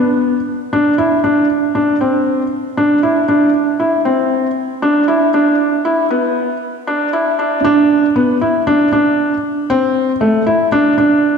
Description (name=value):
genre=electronica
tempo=117 BPM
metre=4/4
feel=straight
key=unclear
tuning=A4 = 440 Hz
part: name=felt-muted upright piano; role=solo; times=0.0-11.4 s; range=A3 to E4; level=-12 LUFS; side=equal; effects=ping-pong delay
room=wet concert hall reverb, RT60 2.3 s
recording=dark, warm production, high-pass filter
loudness=-12 LUFS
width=side -6 dB against mid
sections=0.0-7.6 A section; 7.6-11.4 B section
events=build-up 0.0-7.6; drop 7.6-11.4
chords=none